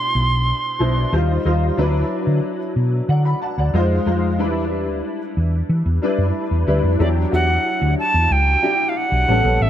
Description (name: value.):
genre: polished 1980s jazz-funk pop.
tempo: 92 BPM.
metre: 4/4.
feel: straight.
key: unclear.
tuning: A4 = 440 Hz.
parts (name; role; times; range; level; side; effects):
mellow alto recorder; melody; 0.0-1.1, 7.0-9.7 s; D5 to C6; -19 LUFS; right 2 dB; none.
warm grand piano; accompaniment; 0.0-9.7 s; B2 to B5; -22 LUFS; left 1 dB; ensemble chorus.
hollow-body short-scale fingered electric bass; bass; 0.1-9.7 s; A1 to E3; -18 LUFS; equal; none.
room: light reverb.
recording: none.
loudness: -16 LUFS.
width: side -10 dB against mid.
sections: 0.0-7.0 A section; 7.0-9.7 B section.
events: none.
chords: 0.0 Cmaj9; 1.1 Eb69; 1.8 D69; 3.7 Fm7; 4.4 Em7; 7.0 Em9.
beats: 0.48 1.13 | 1.78 2.43 3.09 3.74 | 4.39 5.04 5.70 6.35 | 7.00 7.65 8.31 8.96 | 9.61.